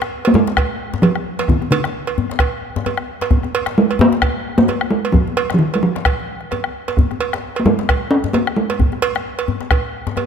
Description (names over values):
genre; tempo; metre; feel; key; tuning
west african traditional, West African drum ensemble; 131 BPM; 4/4; swing 57% on 16ths; Db major pentatonic; A4 = 439 Hz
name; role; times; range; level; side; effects
bombo; percussion; 0.0-10.2 s; none; -20 LUFS; equal; none
djembe; percussion; 0.0-10.3 s; none; -24 LUFS; left 7 dB; none
cowbell; percussion; 0.2-10.3 s; none; -23 LUFS; right 7 dB; none
talking drum; melody; 0.3-9.5 s; Db3 to Db4; -16 LUFS; right 1 dB; none
room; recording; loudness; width
light reverb; close, detailed microphones; -15 LUFS; side -7 dB against mid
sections
0.0-10.3 A section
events
none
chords
none